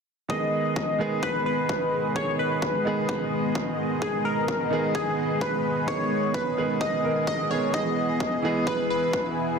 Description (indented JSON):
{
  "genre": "EDM, festival progressive house",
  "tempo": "129 BPM",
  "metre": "4/4",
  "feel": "straight",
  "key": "G# minor",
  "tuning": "A4 = 441 Hz",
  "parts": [
    { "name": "plucky unison lead", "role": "melody", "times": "0.3-9.6 s", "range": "G#4 to D#5", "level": "-27 LUFS", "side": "left 2 dB", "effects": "ping-pong delay" },
    { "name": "warm baby grand piano", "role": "accompaniment", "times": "0.3-9.6 s", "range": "D#3 to A#4", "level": "-28 LUFS", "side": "right 4 dB", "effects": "sidechain pumping, ping-pong delay" },
    { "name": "lush unison pad", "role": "sustained chords", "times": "0.7-9.6 s", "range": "E3 to D#5", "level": "-31 LUFS", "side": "left 1 dB", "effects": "chorus, phaser, sidechain pumping" },
    { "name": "electronic kick drum", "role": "drums", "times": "0.3-9.2 s", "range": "none", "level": "-32 LUFS", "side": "left 1 dB", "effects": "high-pass filter on kick, high-pass filter on room" }
  ],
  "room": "moderate lush hall reverb, RT60 2.0 s, digital ambience",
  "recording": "dense, heavily limited modern master",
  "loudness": "-23 LUFS",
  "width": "side -5 dB against mid",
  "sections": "0.3-9.6 A section",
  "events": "none",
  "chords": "0.3 G#m; 7.7 E"
}